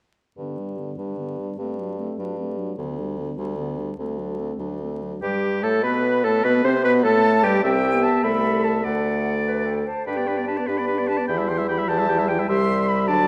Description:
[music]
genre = quick classical-period movement for wind quintet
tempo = 99 BPM (dotted quarters)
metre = 6/8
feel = straight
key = G major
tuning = A4 = 441 Hz
[part]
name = dark French horn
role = accompaniment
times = 0.4-13.3 s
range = D3 to D4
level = -28 LUFS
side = equal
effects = none
[part]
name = warm clarinet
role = accompaniment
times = 0.4-13.3 s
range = B3 to C5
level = -31 LUFS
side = equal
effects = none
[part]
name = clear bassoon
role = bass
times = 0.4-13.3 s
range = C2 to C3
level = -28 LUFS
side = equal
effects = none
[part]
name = concert flute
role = melody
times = 5.2-13.3 s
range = F#5 to C6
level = -28 LUFS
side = equal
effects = none
[part]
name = clear oboe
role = second line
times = 5.2-13.3 s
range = G4 to G5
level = -29 LUFS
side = equal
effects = none
[sound]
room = wet concert hall reverb, RT60 1.8 s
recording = vinyl crackle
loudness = -22 LUFS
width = mono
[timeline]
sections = 0.4-5.2 A section; 5.2-13.3 B section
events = none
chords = 0.4 G; 1.6 D7/G; 2.8 G/D; 4.0 D7; 5.2 G; 6.4 Am9; 7.6 C; 8.2 Am/C; 8.8 D; 10.1 G; 11.3 Em; 12.5 C

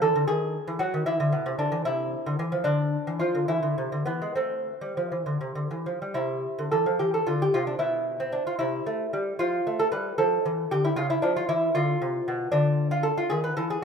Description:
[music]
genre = classical, baroque-style dance for lute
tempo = 66-78 BPM (dotted quarters)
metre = 6/8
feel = rubato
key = A minor, C major from 6.2 s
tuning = A4 = 440 Hz
[part]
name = lute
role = solo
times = 0.0-13.8 s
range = B2 to B4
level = -24 LUFS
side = equal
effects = none
[sound]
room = moderate lush hall reverb, RT60 2.6 s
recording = rough home demo mix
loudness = -24 LUFS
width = side -6 dB against mid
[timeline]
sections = 0.0-6.2 A section; 6.2-13.8 A section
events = none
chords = 0.3 D#madd11; 1.1 E5; 1.9 Cadd9; 2.7 Dmadd9; 3.5 E; 4.4 Am; 7.8 N.C.; 8.6 C; 9.4 Dm/F (rootless); 11.0 Dbm; 11.8 Dm; 12.5 N.C.; 13.3 D#sus4

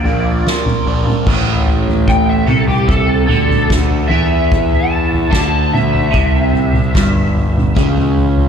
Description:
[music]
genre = psychedelic rock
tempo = 74 BPM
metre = 4/4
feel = straight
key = unclear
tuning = A4 = 441 Hz
[part]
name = overdriven slide guitar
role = melody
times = 0.0-7.3 s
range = G4 to A5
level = -19 LUFS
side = left 1 dB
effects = ensemble chorus, tape echo
[part]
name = overdriven electric guitar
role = riff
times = 0.0-8.5 s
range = G2 to F4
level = -18 LUFS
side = right 1 dB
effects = phaser
[part]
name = fuzz picked electric bass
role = bass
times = 0.0-8.5 s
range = G1 to E2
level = -18 LUFS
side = equal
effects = overdrive
[part]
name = soft-mallet drum kit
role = drums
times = 0.1-8.5 s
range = crash cymbal, kick drum, snare drum, toms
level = -15 LUFS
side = equal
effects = none
[sound]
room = light reverb, small room ambience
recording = none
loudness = -11 LUFS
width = side -7 dB against mid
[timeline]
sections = 0.0-1.3 A section; 1.3-8.5 B section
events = electric slide guitar solo 1.3-8.5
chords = 0.0 Bb; 1.3 A5; 7.8 N.C.

